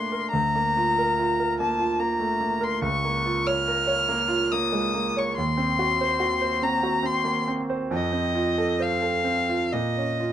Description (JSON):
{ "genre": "classical, romantic duo for violin and grand piano", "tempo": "71 BPM", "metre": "3/4", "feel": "uneven beats, rubato", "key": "Bb minor", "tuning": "A4 = 440 Hz", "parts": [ { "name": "rich violin", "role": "melody", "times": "0.0-10.3 s", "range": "Eb5 to F6", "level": "-24 LUFS", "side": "left 2 dB", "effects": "none" }, { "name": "bright concert grand piano", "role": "accompaniment", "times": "0.0-10.3 s", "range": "Db2 to Db5", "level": "-25 LUFS", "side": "right 2 dB", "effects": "none" } ], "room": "light reverb", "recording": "dark, warm production", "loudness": "-22 LUFS", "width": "side -10 dB against mid", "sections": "0.0-10.3 A section", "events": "none", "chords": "0.3 Bb/D; 2.8 Bbm/Db; 5.4 Cdim/Eb; 7.9 F7; 9.7 Bbm", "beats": "| 0.32 1.18 2.00 | 2.83 3.67 4.52 | 5.37 6.21 7.05 | 7.92 8.80 9.71" }